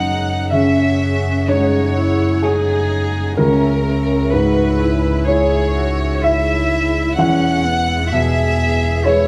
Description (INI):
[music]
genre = neoclassical piano and strings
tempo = 63 BPM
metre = 4/4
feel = rubato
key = C# dorian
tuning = A4 = 441 Hz
[part]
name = warm chamber violin section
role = melody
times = 0.0-9.3 s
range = G#4 to F#5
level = -24 LUFS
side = equal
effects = none
[part]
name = dark cello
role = second line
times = 0.0-9.3 s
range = B3 to G#4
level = -24 LUFS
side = equal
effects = none
[part]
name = dark grand piano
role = accompaniment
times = 0.0-9.3 s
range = C#2 to F#5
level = -20 LUFS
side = equal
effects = none
[part]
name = warm analog pad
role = sustained chords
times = 0.0-9.3 s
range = B3 to F#5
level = -30 LUFS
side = equal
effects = chorus
[part]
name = dark double bass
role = bass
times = 0.0-9.3 s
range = E1 to C#2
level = -23 LUFS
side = equal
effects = none
[sound]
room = wet large studio reverb, RT60 1.2 s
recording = band playing live in one room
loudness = -16 LUFS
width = mono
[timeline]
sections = 0.0-9.3 A section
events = none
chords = 0.0 F#sus2; 3.4 C#m; 7.2 E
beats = 0.52 1.48 2.42 | 3.38 4.33 5.27 6.23 | 7.18 8.11 9.05